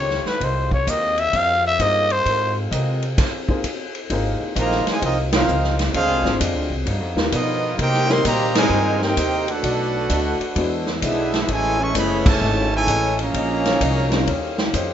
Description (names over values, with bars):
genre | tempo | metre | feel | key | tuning
jazz, big band swing | 130 BPM | 4/4 | swing 66% on 8ths | unclear | A4 = 440 Hz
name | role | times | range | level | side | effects
growling trumpet | melody | 0.0-2.6 s | Cb5 to F5 | -19 LUFS | left 1 dB | none
picked swing-style acoustic guitar | accompaniment | 0.0-14.9 s | G2 to C5 | -29 LUFS | left 3 dB | none
warm saxophone section | sustained chords | 0.0-14.9 s | C3 to C5 | -33 LUFS | equal | none
upright bass | bass | 0.0-14.9 s | Gb1 to C3 | -24 LUFS | equal | none
swinging big-band drum kit | drums | 0.1-14.9 s | crash cymbal, hi-hat, kick drum, ride cymbal, snare drum | -24 LUFS | equal | none
clear upright piano | accompaniment | 1.8-14.3 s | G3 to C5 | -26 LUFS | left 3 dB | plate reverb
clear trumpet section | melody | 4.6-14.6 s | B3 to C#6 | -23 LUFS | right 1 dB | none
clear trombone section | second line | 4.6-14.6 s | Bb2 to G4 | -24 LUFS | right 3 dB | plate reverb
room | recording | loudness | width
moderate studio reverb, RT60 0.6 s | rough home demo mix, nothing above 7.6 kHz | -18 LUFS | side -10 dB against mid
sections
0.0-4.1 A section; 4.1-14.9 B section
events
trumpet solo 0.0-4.1; band accent 5.2, 8.5, 12.2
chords
0.4 Ab69; 5.9 Dm7b5; 6.9 G7alt; 7.8 Cm7; 9.6 Bm7; 10.6 E9; 11.5 Amaj7; 13.3 Bbm11; 14.3 Eb13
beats
| 0.41 0.87 1.33 1.79 | 2.25 2.71 3.17 3.63 | 4.09 4.56 5.02 5.48 | 5.94 6.40 6.86 7.32 | 7.78 8.25 8.71 9.17 | 9.63 10.10 10.56 11.02 | 11.49 11.95 12.41 12.88 | 13.34 13.81 14.27 14.74